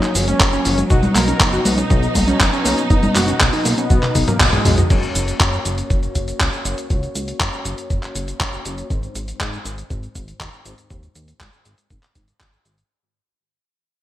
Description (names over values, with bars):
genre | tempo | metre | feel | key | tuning
italo disco | 120 BPM | 4/4 | straight | unclear | A4 = 440 Hz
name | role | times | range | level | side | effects
wide unison lead | melody | 0.0-4.8 s | Ab3 to Bb4 | -24 LUFS | right 1 dB | digital delay
warm studio string section | sustained chords | 0.0-4.9 s | Gb3 to D#4 | -24 LUFS | right 2 dB | none
analog synth brass | stabs | 0.0-12.9 s | Ab2 to D#5 | -27 LUFS | left 3 dB | chorus
dusty soul sampler-style drum kit | drums | 0.0-12.9 s | cabasa, congas, crash cymbal, handclaps, hi-hat, toms | -19 LUFS | equal | studio reverb, gated reverb
warbly dusty pluck | arpeggios | 0.2-4.9 s | F3 to F#4 | -26 LUFS | right 2 dB | chorus, digital delay
chorused synth bass | bass | 0.2-12.8 s | Gb1 to Ab2 | -24 LUFS | equal | none
electronic kick drum | drums | 0.4-12.5 s | none | -18 LUFS | equal | studio reverb
room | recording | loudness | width
light reverb, digital ambience | bright 1980s-style digital production | -15 LUFS | side -13 dB against mid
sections
0.0-4.9 A section; 4.9-12.9 B section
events
drum fill 3.9-4.9; band accent 4.4; fade-out 4.9-12.9; filter sweep on analog polysynth 4.9-12.9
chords
0.0 Gb; 0.9 B; 4.9 Gb; 8.9 Ab